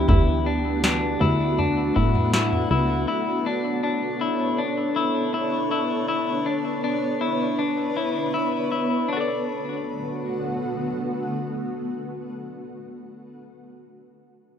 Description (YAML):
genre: dream pop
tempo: 80 BPM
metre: 4/4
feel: straight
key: D major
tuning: A4 = 438 Hz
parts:
  - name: granular cloud pad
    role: sustained chords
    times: 0.0-12.1 s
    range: D3 to C#5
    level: -26 LUFS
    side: right 1 dB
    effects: built-in reverb
  - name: clean electric guitar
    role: arpeggios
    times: 0.0-12.2 s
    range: D4 to D5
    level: -26 LUFS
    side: left 4 dB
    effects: wide subtle chorus, digital delay, plate reverb
  - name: plucky analog bass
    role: bass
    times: 0.0-3.1 s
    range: C#2 to A2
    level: -24 LUFS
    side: equal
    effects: none
  - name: booming analog drum machine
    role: drums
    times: 0.1-2.7 s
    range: kick drum, snare drum, toms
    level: -23 LUFS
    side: equal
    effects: none
room: wet small room reverb, RT60 0.6 s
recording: rough home demo mix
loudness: -21 LUFS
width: side -8 dB against mid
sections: 0.0-9.1 A section; 9.1-12.1 B section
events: none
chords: 0.1 D6; 3.1 Bm7; 9.1 D6